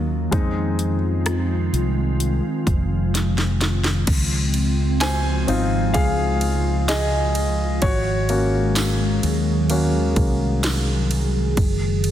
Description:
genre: pop ballad.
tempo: 64 BPM.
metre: 4/4.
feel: straight.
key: Db major.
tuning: A4 = 440 Hz.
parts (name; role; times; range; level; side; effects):
warm baby grand piano; accompaniment; 0.0-11.6 s; Gb3 to Ab5; -24 LUFS; left 2 dB; none.
glassy FM pad; sustained chords; 0.0-12.1 s; Db3 to Ab4; -25 LUFS; equal; ensemble chorus, built-in reverb, phaser.
mellow fretless electric bass; bass; 0.0-12.1 s; F1 to F2; -22 LUFS; equal; none.
house drum kit; drums; 0.3-12.1 s; crash cymbal, hi-hat, kick drum, ride cymbal, rim click, snare drum; -25 LUFS; equal; overdrive.
tambourine; percussion; 5.0-10.9 s; none; -35 LUFS; right 5 dB; none.
room: light reverb, digital ambience.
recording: dense, heavily limited modern master.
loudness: -18 LUFS.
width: side -11 dB against mid.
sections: 0.0-4.1 A section; 4.1-12.1 B section.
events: grand piano solo 0.0-4.1, 4.1-12.1; drum fill 3.1-4.1.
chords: 0.3 Fm7; 4.1 Dbmaj7; 7.8 Ab7sus4; 11.6 Ebm/Gb.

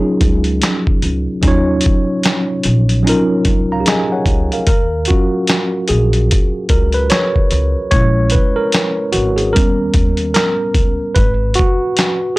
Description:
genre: lo-fi hip hop.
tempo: 74 BPM.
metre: 4/4.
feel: swing 61% on 16ths.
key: Eb minor.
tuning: A4 = 439 Hz.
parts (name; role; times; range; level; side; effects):
tine electric piano; accompaniment; 0.0-12.4 s; Gb3 to Bb5; -16 LUFS; equal; medium stereo tremolo, cassette tape.
upright bass; bass; 0.2-11.5 s; Ab1 to Eb2; -17 LUFS; equal; none.
dusty soul sampler-style drum kit; drums; 0.2-12.2 s; handclaps, hi-hat, kick drum, snare drum; -15 LUFS; equal; none.
room: little or no reverb.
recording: dry, gritty hardware recording, transformer saturation.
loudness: -12 LUFS.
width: side -21 dB against mid.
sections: 0.0-4.7 A section; 4.7-12.4 A section.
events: tine electric piano solo 4.7-12.4.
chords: 0.0 Ebm9; 4.7 Ebm9 (rootless); 7.9 Bbm7b5; 9.5 Eb7b13; 11.2 Abm7.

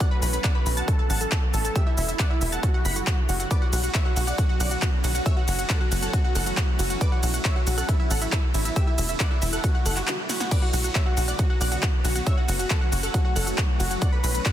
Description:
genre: uplifting trance.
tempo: 137 BPM.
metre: 4/4.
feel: straight.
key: B minor.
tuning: A4 = 438 Hz.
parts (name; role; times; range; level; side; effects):
supersaw stab; melody; 0.0-14.5 s; E4 to B5; -31 LUFS; equal; cassette tape, sidechain pumping, digital delay.
analog pluck; second line; 0.0-14.5 s; E5 to B6; -35 LUFS; left 1 dB; chorus, sidechain pumping, digital delay.
shimmering ambient pad; sustained chords; 0.0-14.5 s; D3 to F#4; -33 LUFS; right 1 dB; chorus, built-in reverb, sidechain pumping.
big-room dance drum kit; drums; 0.0-14.5 s; crash cymbal, handclaps, hi-hat, ride cymbal, shaker, snare drum; -29 LUFS; equal; none.
electronic kick drum; drums; 0.0-14.5 s; none; -23 LUFS; equal; none.
tight sequencer bass; bass; 0.2-14.4 s; E1 to B1; -26 LUFS; equal; sidechain pumping.
room: little or no reverb.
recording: dense, heavily limited modern master.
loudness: -21 LUFS.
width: side -11 dB against mid.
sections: 0.0-14.5 A section.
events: break 10.1-10.5; drum fill 10.3.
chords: 0.0 Bmadd9; 0.9 Asus2; 1.8 Em7; 2.6 F#m7; 3.5 Bmadd9; 5.3 F#m7; 7.0 Bmadd9; 7.9 Asus2; 8.8 Em7; 9.6 F#m7; 10.5 Bmadd9; 12.3 F#m7; 14.0 Bmadd9.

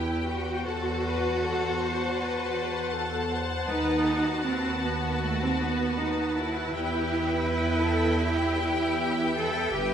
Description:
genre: classical, slow romantic movement for string orchestra.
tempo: 79 BPM.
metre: 4/4.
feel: rubato.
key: E minor.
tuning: A4 = 439 Hz.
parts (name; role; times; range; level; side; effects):
rich symphonic violin section; melody; 0.0-9.9 s; G5 to A5; -36 LUFS; left 4 dB; none.
rich symphonic violin section; second line; 0.0-9.9 s; F#4 to C5; -32 LUFS; left 5 dB; none.
rich symphonic viola section; accompaniment; 0.0-9.9 s; B4 to G5; -34 LUFS; equal; none.
clear symphonic double bass section; bass; 0.0-9.9 s; G1 to E2; -31 LUFS; right 2 dB; none.
warm studio cello section; bass; 0.0-9.9 s; A3 to A4; -29 LUFS; right 2 dB; none.
room: moderate scoring stage reverb, RT60 1.9 s.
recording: none.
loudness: -25 LUFS.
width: side -8 dB against mid.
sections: 0.0-9.9 A section.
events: none.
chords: 0.0 Em; 0.7 F#m7b5/E; 3.7 B7/D#; 6.7 Em.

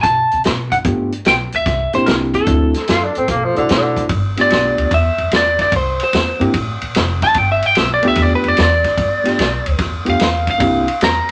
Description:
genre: electric blues shuffle.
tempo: 148 BPM.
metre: 4/4.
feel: swing 68% on 8ths.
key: G mixolydian.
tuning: A4 = 440 Hz.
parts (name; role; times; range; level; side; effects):
lightly driven lead guitar; melody; 0.0-11.3 s; A4 to Bb5; -18 LUFS; equal; none.
upright bass; bass; 0.0-11.2 s; F1 to C3; -24 LUFS; equal; none.
vintage drum kit; drums; 0.0-11.3 s; hi-hat, kick drum, ride cymbal, snare drum; -22 LUFS; equal; none.
bright reed electric piano; accompaniment; 0.8-10.9 s; A3 to C5; -21 LUFS; equal; overdrive.
clear tenor saxophone; second line; 2.9-4.0 s; D3 to F4; -20 LUFS; equal; none.
room: moderate studio reverb, RT60 0.6 s.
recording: none.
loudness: -16 LUFS.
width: mono.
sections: 0.0-4.1 A section; 4.1-11.3 B section.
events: lead electric guitar solo 4.1-11.3.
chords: 0.0 N.C.; 0.9 G7; 1.7 C7; 2.5 D7; 4.1 G7; 5.7 C7; 7.4 G7; 10.6 C7.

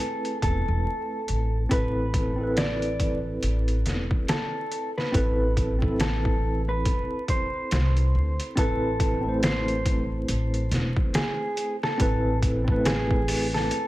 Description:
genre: trip hop.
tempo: 70 BPM.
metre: 4/4.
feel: swing 59% on 16ths.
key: A harmonic minor.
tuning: A4 = 439 Hz.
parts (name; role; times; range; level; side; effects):
mellow electric guitar; melody; 0.0-13.9 s; G#4 to D5; -31 LUFS; equal; tape echo.
tine electric piano; accompaniment; 0.0-13.9 s; A3 to C5; -29 LUFS; equal; tremolo, vintage 12-bit sampler grit, tape echo.
trip hop sampler-style drum kit; drums; 0.2-13.9 s; hi-hat, kick drum, snare drum; -27 LUFS; equal; overdrive.
upright bass; bass; 0.4-13.7 s; E1 to D2; -26 LUFS; equal; none.
room: little or no reverb.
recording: vinyl crackle.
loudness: -23 LUFS.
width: side -16 dB against mid.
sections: 0.0-8.6 A section; 8.6-13.9 B section.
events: none.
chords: 0.0 Amadd9.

